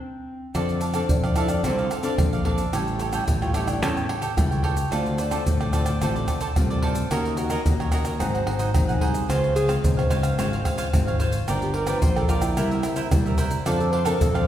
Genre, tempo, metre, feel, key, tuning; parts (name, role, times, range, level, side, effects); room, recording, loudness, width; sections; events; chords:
samba and choro; 110 BPM; 4/4; straight; F major; A4 = 439 Hz
mellow clarinet; second line; 0.0-0.6 s; C4; -38 LUFS; left 1 dB
cavaquinho; accompaniment; 0.5-14.5 s; D4 to G5; -29 LUFS; right 3 dB
nylon-string guitar; accompaniment; 0.5-14.5 s; G2 to A4; -29 LUFS; left 2 dB
modern bright fingered electric bass; bass; 0.5-14.5 s; G1 to F2; -26 LUFS; equal
tube shaker, surdo, pandeiro and tamborim; percussion; 0.5-14.5 s; -24 LUFS; equal
breathy alto saxophone; melody; 1.1-14.5 s; C4 to C5; -29 LUFS; right 1 dB
wet recital hall reverb, RT60 1.4 s; recorded in a church or concert hall; -21 LUFS; side -11 dB against mid
0.5-14.5 A section
drum fill 0.0-0.5; band accent 0.0-0.5; alto saxophone solo 0.5-14.5
0.0 N.C.; 0.5 F6; 2.7 A7; 4.9 Dm7; 7.1 Ebm7; 8.2 Ab7; 9.3 Dbmaj7; 11.5 Gm7; 12.6 C7; 13.7 F6